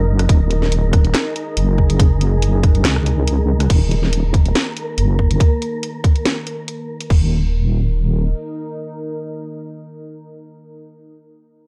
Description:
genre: deep dubstep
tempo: 141 BPM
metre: 4/4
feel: swing 53% on 16ths, half-time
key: Eb minor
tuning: A4 = 439 Hz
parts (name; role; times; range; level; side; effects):
- deep dark ambient pad; sustained chords; 0.0-10.1 s; Eb4 to Bb4; -32 LUFS; equal; chorus, built-in reverb
- deep soft wobble bass; bass; 0.0-8.3 s; Eb1 to Db2; -18 LUFS; equal; chorus
- wind-like tuned noise texture; texture; 0.0-7.1 s; Bb3 to Bb4; -30 LUFS; equal; built-in reverb
- garage drum kit; drums; 0.2-7.2 s; crash cymbal, handclaps, hi-hat, rim click, snare drum; -24 LUFS; equal; studio ambience
- electronic kick drum; drums; 0.3-7.2 s; none; -16 LUFS; equal; studio ambience
room: digital ambience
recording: dark, warm production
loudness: -17 LUFS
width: mono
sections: 0.0-3.7 A section; 3.7-7.1 B section; 7.1-10.5 C section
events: drop 0.0-3.7; kick drops out 3.3-3.7; filter sweep on ambient pad 3.7-7.1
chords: 0.0 Eb5

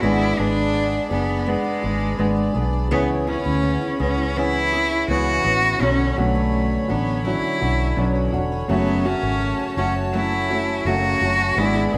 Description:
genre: acoustic pop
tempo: 83 BPM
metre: 4/4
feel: straight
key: F# minor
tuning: A4 = 441 Hz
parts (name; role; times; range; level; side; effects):
- clear cello; melody; 0.0-12.0 s; G#3 to F#4; -25 LUFS; equal; none
- dark upright piano; accompaniment; 0.0-12.0 s; A3 to D5; -36 LUFS; equal; none
- nylon-string guitar; accompaniment; 0.0-12.0 s; F#2 to G#4; -26 LUFS; equal; none
- hand-pumped harmonium; sustained chords; 0.0-12.0 s; D3 to B5; -32 LUFS; equal; none
- fingerpicked steel-string acoustic guitar; arpeggios; 0.0-12.0 s; F#3 to A4; -33 LUFS; equal; none
- vintage muted fingered electric bass; bass; 0.0-12.0 s; E1 to D2; -27 LUFS; equal; none
room: wet recital hall reverb, RT60 1.2 s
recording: recorded in a church or concert hall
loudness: -21 LUFS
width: mono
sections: 0.0-12.0 A section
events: none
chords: 0.0 G#dim; 2.9 C#m7; 5.8 Bmadd9; 8.7 F#m

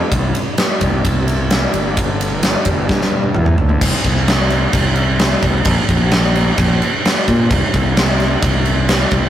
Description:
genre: classic rock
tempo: 130 BPM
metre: 4/4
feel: straight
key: unclear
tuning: A4 = 441 Hz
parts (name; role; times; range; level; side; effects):
- fuzz fingered electric bass; bass; 0.1-9.3 s; G1 to Bb2; -16 LUFS; equal; overdrive
- huge arena drum kit; drums; 0.1-9.2 s; crash cymbal, kick drum, ride cymbal, snare drum, toms; -15 LUFS; equal; none
room: light reverb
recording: rough rehearsal-room recording, warm saturation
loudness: -13 LUFS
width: side -11 dB against mid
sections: 0.0-3.8 A section; 3.8-9.3 B section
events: drum fill 2.9-3.8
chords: none

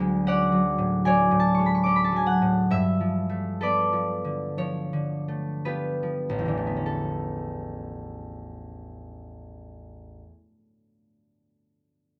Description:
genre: classical, solo harp piece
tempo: 47-77 BPM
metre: 4/4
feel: rubato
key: A mixolydian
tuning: A4 = 439 Hz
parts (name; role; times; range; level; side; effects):
- concert harp; solo; 0.0-10.5 s; A1 to D6; -26 LUFS; equal; none
room: light reverb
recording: close, detailed microphones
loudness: -25 LUFS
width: mono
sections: 0.0-6.9 A section; 6.9-11.3 B section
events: slowing down 0.0-6.9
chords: 0.0 Dmaj7#11; 2.7 G9; 6.9 Aadd9

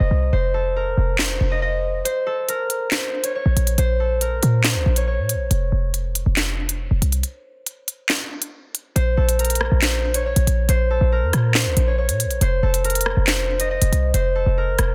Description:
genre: hip hop, drill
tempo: 139 BPM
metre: 4/4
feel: half-time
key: Bb harmonic minor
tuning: A4 = 436 Hz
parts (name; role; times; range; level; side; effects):
- concert harp; melody; 0.0-14.9 s; A4 to Eb5; -26 LUFS; equal; tape echo
- short 808-style bass; bass; 0.0-14.9 s; F1 to Bb2; -22 LUFS; equal; none
- drill drum kit; drums; 1.2-14.9 s; handclaps, hi-hat, rim click, snare drum; -24 LUFS; equal; none
room: little or no reverb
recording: dense, heavily limited modern master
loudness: -20 LUFS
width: mono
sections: 0.0-9.0 A section; 9.0-14.9 B section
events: break 0.0-2.1, 5.5-9.0; kick muted 2.1-2.9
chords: 0.0 F5; 2.1 Bbm; 5.5 F5; 9.0 Bbm; 12.4 F5

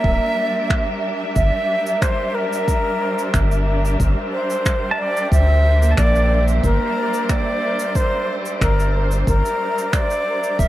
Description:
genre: ambient dub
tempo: 91 BPM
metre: 4/4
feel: straight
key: G dorian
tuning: A4 = 440 Hz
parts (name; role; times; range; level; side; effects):
- silver concert flute; melody; 0.0-10.7 s; Bb4 to E5; -21 LUFS; equal; dub echo
- dark chamber string section; sustained chords; 0.0-10.7 s; G3 to E5; -26 LUFS; equal; none
- pedal steel guitar; arpeggios; 0.0-0.8, 4.9-7.8 s; Bb3 to A5; -27 LUFS; right 3 dB; dub echo
- soft dub sub bass; bass; 0.0-10.7 s; D1 to D2; -17 LUFS; equal; none
- electronic kick drum; drums; 0.0-10.7 s; none; -20 LUFS; equal; none
- wind-like tuned noise texture; texture; 0.0-10.7 s; E5; -32 LUFS; right 2 dB; built-in reverb
- finger snaps and cabasa; drums; 0.7-10.7 s; none; -28 LUFS; right 1 dB; none
room: moderate spring reverb, RT60 1.9 s, studio ambience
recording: none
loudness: -16 LUFS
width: side -14 dB against mid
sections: 0.0-10.7 A section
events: none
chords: 0.0 Gm69

